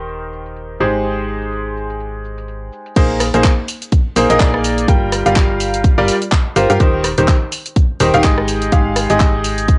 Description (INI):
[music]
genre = piano house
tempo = 125 BPM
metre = 4/4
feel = swing 57% on 16ths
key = unclear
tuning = A4 = 441 Hz
[part]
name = clear grand piano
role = riff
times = 0.0-9.8 s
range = Eb3 to G5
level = -16 LUFS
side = equal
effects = sidechain pumping, cassette tape
[part]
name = solid FM bass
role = bass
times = 0.0-9.8 s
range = Eb1 to G2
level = -21 LUFS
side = equal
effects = sidechain pumping
[part]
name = house drum kit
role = drums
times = 0.1-9.8 s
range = cabasa, crash cymbal, handclaps, hi-hat, rim click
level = -21 LUFS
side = equal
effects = low-pass filter on perc, cassette tape, low-pass filter on hats, low-pass filter on cymbals, low-pass filter on snare, low-pass filter on room
[part]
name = electronic kick drum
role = drums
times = 3.0-9.8 s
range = none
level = -12 LUFS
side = equal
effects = cassette tape
[sound]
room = light reverb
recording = home recording on cassette, nothing above 10.9 kHz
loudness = -12 LUFS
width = side -30 dB against mid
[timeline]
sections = 0.0-3.0 A section; 3.0-9.8 B section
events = drop 3.0-9.8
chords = 0.0 Eb6; 0.8 Abmaj7; 3.0 Bb9sus4; 4.9 Gm7; 6.8 Eb6; 8.5 Abmaj7(no3)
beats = 0.08 0.56 | 1.04 1.52 2.00 2.48 | 2.96 3.44 3.92 4.40 | 4.88 5.36 5.84 6.32 | 6.80 7.28 7.76 8.24 | 8.72 9.20 9.68